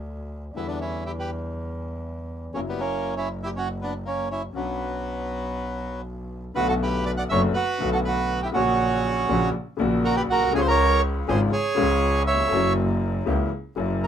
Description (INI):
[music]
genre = tango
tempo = 120 BPM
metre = 4/4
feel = rubato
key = B minor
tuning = A4 = 440 Hz
[part]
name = warm upright piano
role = accompaniment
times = 0.0-14.1 s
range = F#1 to F#4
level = -28 LUFS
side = left 5 dB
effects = none
[part]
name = clear double bass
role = bass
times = 0.0-14.1 s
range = F#1 to E2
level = -28 LUFS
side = right 1 dB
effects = none
[part]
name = bandoneon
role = melody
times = 0.6-14.1 s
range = F#3 to F#5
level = -24 LUFS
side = right 3 dB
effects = none
[sound]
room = light reverb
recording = minimal, uncompressed stereo recording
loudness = -22 LUFS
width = side -9 dB against mid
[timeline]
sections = 0.0-6.5 A section; 6.5-14.1 B section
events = none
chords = 0.0 D; 0.6 Em7; 2.6 F#7; 4.5 Bmadd9; 6.5 Bm7; 8.6 F#/A#; 10.5 C#; 12.5 F#7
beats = 0.05 | 0.55 1.05 1.55 2.05 | 2.55 3.05 3.54 4.04 | 4.54 5.04 5.54 6.04 | 6.55 7.05 7.55 8.05 | 8.55 9.05 9.54 10.04 | 10.53 11.03 11.52 12.02 | 12.51 13.01 13.51 14.02